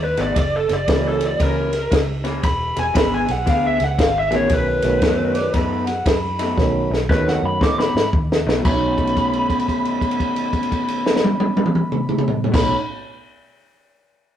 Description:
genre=electric blues shuffle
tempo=116 BPM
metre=4/4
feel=swing 64% on 8ths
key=B mixolydian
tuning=A4 = 439 Hz
part: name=lead guitar through a small cranked amp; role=melody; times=0.0-12.7 s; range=A4 to D6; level=-22 LUFS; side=equal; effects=overdrive
part: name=vintage muted fingered electric bass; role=bass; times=0.0-12.7 s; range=E1 to A2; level=-26 LUFS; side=equal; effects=none
part: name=electric guitar through a small old amp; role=riff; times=0.2-12.8 s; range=F#2 to G#4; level=-25 LUFS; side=left 2 dB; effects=none
part: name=compact cocktail drum kit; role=drums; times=0.2-12.7 s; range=crash cymbal, kick drum, ride cymbal, snare drum, toms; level=-20 LUFS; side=equal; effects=none
part: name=dark upright piano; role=accompaniment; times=0.9-12.8 s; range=B2 to F#4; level=-24 LUFS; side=right 2 dB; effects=none
part: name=overdriven harmonica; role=second line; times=5.4-12.7 s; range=B4 to B5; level=-27 LUFS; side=right 1 dB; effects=none
room=light reverb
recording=rough rehearsal-room recording, tube saturation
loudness=-16 LUFS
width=side -10 dB against mid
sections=0.0-8.7 A section; 8.7-12.8 B section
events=drum fill 6.6-8.7; held note 8.7-12.5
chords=0.4 F#7; 2.4 E7; 4.5 B7; 8.7 B9

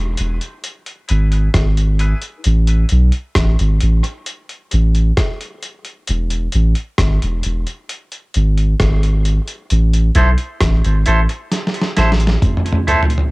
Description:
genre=dub reggae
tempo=66 BPM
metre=4/4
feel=straight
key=A harmonic minor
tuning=A4 = 440 Hz
part: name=soft dub sub bass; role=bass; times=0.0-12.4 s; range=E1 to B1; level=-13 LUFS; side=equal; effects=none
part: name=warm upright piano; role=stabs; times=0.2-2.2 s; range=E4 to B4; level=-33 LUFS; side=left 2 dB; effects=high-pass filter, cassette tape, tape echo
part: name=dusty soul sampler-style drum kit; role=drums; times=0.2-13.3 s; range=hi-hat, kick drum, rim click, snare drum, toms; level=-19 LUFS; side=equal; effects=overdrive, cassette tape
part: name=clean electric guitar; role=accompaniment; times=10.2-13.0 s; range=E4 to C5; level=-20 LUFS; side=right 1 dB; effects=high-pass filter, cassette tape, tape echo
room=digital ambience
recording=home recording on cassette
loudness=-14 LUFS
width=side -24 dB against mid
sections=0.0-13.3 A section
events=break 0.0-9.7; filter sweep 0.0-13.3; drum fill 11.5-13.3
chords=0.0 E; 2.5 N.C.; 6.1 E; 9.7 Am

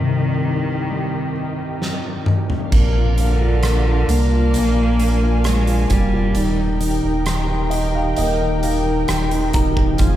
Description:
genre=pop ballad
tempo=66 BPM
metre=4/4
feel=straight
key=Eb major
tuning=A4 = 439 Hz
part: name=warm cello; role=melody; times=0.0-6.8 s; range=D3 to Bb3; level=-23 LUFS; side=equal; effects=none
part: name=felt-muted upright piano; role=accompaniment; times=0.0-10.2 s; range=C2 to Bb5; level=-22 LUFS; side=left 2 dB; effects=none
part: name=muted studio string section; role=sustained chords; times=0.0-10.2 s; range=C3 to Ab5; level=-26 LUFS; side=right 1 dB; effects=none
part: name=huge arena drum kit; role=drums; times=1.8-10.2 s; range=crash cymbal, hi-hat, kick drum, rim click, snare drum, toms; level=-22 LUFS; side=equal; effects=none
part: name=warm sub bass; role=bass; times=2.7-10.2 s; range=Eb1 to C2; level=-19 LUFS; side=right 1 dB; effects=none
room=light reverb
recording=band playing live in one room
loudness=-16 LUFS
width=side -12 dB against mid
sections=0.0-2.7 A section; 2.7-10.2 B section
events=drum fill 1.8-2.7; felt piano fill 7.3-10.0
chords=0.0 Cm; 2.7 Bb; 6.4 Eb

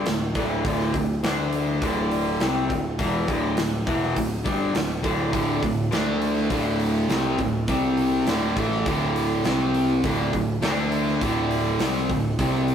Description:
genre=hard rock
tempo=102 BPM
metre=4/4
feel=straight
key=unclear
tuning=A4 = 440 Hz
part: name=cranked stack guitar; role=riff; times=0.0-12.7 s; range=D2 to D4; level=-24 LUFS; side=left 1 dB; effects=overdrive
part: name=overdriven picked electric bass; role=bass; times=0.0-12.7 s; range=D1 to D2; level=-29 LUFS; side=equal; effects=none
part: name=huge arena drum kit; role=drums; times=0.1-12.7 s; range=hi-hat, kick drum, snare drum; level=-29 LUFS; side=equal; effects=none
part: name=sludgy distorted guitar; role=riff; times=5.3-12.7 s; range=D2 to D4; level=-27 LUFS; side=right 4 dB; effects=overdrive
room=wet stone room reverb, RT60 1.2 s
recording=rough rehearsal-room recording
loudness=-21 LUFS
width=side -8 dB against mid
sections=0.0-12.7 A section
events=none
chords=0.0 D5; 7.7 C5; 8.3 D5; 9.4 C5; 10.0 D5

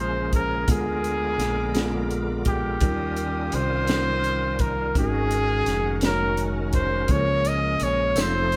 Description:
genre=slow gospel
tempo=56 BPM (dotted quarters)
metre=6/8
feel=straight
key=Db major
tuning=A4 = 441 Hz
part: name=warm trumpet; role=melody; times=0.0-8.6 s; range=G4 to Eb5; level=-28 LUFS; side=equal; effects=none
part: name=mellow tine electric piano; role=accompaniment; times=0.0-8.6 s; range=Ab2 to Db5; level=-31 LUFS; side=equal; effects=none
part: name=bright tonewheel organ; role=sustained chords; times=0.0-8.6 s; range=D3 to C5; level=-34 LUFS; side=equal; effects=fast rotary speaker, chorus vibrato
part: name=warm studio string section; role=sustained chords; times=0.0-8.6 s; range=F5 to Eb6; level=-46 LUFS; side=equal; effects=none
part: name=fingered electric bass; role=bass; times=0.0-8.6 s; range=F1 to Eb2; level=-31 LUFS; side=equal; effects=none
part: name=crisp fusion drum kit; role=drums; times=0.3-8.6 s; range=hi-hat, kick drum, snare drum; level=-29 LUFS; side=equal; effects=none
part: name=tambourine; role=percussion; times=7.5-8.5 s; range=none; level=-40 LUFS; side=equal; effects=none
room=moderate stone room reverb, RT60 1.3 s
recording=band playing live in one room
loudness=-24 LUFS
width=mono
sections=0.0-8.6 A section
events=none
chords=0.0 Db6; 0.7 Bb7b9; 2.8 Eb9; 5.0 Ab9sus4; 7.1 Db6

